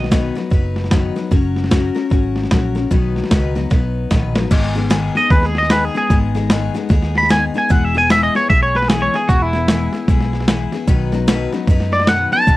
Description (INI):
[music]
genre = honky-tonk and classic country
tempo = 151 BPM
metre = 4/4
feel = swing 62% on 8ths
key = B major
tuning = A4 = 440 Hz
[part]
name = picked steel-string acoustic guitar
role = accompaniment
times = 0.0-12.6 s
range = G#2 to B4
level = -21 LUFS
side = left 6 dB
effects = cassette tape
[part]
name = vintage muted fingered electric bass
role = bass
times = 0.0-12.6 s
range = E1 to F#2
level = -20 LUFS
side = equal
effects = none
[part]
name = boom bap sampler-style drum kit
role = drums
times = 0.0-12.6 s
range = crash cymbal, hi-hat, kick drum, snare drum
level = -16 LUFS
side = equal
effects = cassette tape
[part]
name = twangy electric guitar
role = melody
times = 5.2-12.6 s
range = E4 to B5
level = -16 LUFS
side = equal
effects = none
[sound]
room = light reverb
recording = home recording on cassette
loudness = -14 LUFS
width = side -17 dB against mid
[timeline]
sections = 0.0-4.5 A section; 4.5-12.6 B section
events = drum fill 3.7-4.5; clean electric guitar solo 4.5-12.6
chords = 0.0 B; 1.3 F#; 2.9 B; 4.5 G#m; 7.7 E; 10.9 B